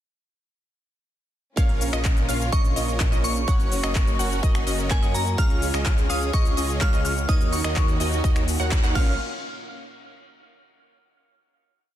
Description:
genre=EDM, festival progressive house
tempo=126 BPM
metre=4/4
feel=straight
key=Bb minor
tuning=A4 = 441 Hz
part: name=picked steel-string acoustic guitar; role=accompaniment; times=1.6-9.1 s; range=Bb2 to Db5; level=-34 LUFS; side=right 3 dB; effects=sidechain pumping, tape echo
part: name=warm studio string section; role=sustained chords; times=1.6-9.2 s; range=Bb2 to Ab4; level=-35 LUFS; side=left 3 dB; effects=sidechain pumping
part: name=wide unison pluck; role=arpeggios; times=1.6-9.1 s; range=Eb5 to Gb5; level=-34 LUFS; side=right 2 dB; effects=sidechain pumping, tape echo
part: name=dense compressed supersaw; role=riff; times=1.6-9.1 s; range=Db4 to Gb5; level=-31 LUFS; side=right 1 dB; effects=sidechain pumping, tape echo
part: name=wide detuned saw bass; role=bass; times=1.6-9.2 s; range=Gb1 to Gb2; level=-27 LUFS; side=equal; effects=chorus, sidechain pumping
part: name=big-room dance drum kit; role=drums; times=1.6-9.0 s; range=cabasa, crash cymbal, finger snaps, handclaps, hi-hat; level=-31 LUFS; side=left 2 dB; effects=soft clipping on snare
part: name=electronic kick drum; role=drums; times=1.6-9.0 s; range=none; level=-21 LUFS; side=equal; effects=none
part: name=glassy synth bell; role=melody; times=2.5-9.2 s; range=Ab5 to F6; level=-31 LUFS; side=equal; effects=chorus, phaser, tape echo
room=light reverb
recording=dense, heavily limited modern master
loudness=-20 LUFS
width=side -12 dB against mid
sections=1.6-9.2 drop; 9.2-11.1 final hit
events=drop 1.6-9.2; band accent 8.7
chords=1.6 Bbm; 3.5 Gb; 5.4 Db; 7.3 Ebm7; 9.0 Bbm; 9.2 N.C.

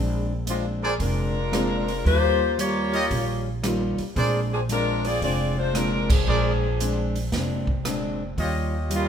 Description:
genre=jazz, big band swing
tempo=114 BPM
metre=4/4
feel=swing 66% on 8ths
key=Bb mixolydian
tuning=A4 = 441 Hz
part: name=picked plugged-in steel-string acoustic guitar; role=accompaniment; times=0.0-9.1 s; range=Bb2 to F4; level=-29 LUFS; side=left 2 dB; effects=none
part: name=upright bass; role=bass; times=0.0-9.1 s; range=F1 to Eb2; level=-26 LUFS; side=right 1 dB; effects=none
part: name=warm saxophone section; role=melody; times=0.5-9.1 s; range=F3 to D5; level=-25 LUFS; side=left 3 dB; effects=none
part: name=swinging big-band drum kit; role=drums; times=0.5-9.1 s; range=crash cymbal, hi-hat, kick drum, rim click, snare drum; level=-29 LUFS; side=right 1 dB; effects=none
part: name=clear trumpet section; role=stabs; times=0.8-9.1 s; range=F4 to Eb5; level=-28 LUFS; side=right 1 dB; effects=none
part: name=dark baby grand piano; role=accompaniment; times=1.5-6.1 s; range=G3 to F4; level=-29 LUFS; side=right 1 dB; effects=none
room=moderate large studio reverb, RT60 1.2 s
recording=minimal, uncompressed stereo recording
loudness=-22 LUFS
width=side -8 dB against mid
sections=0.0-9.1 A section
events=band accent 6.0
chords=0.0 Bb9; 2.1 Eb9; 4.2 Bb9; 8.4 Eb9

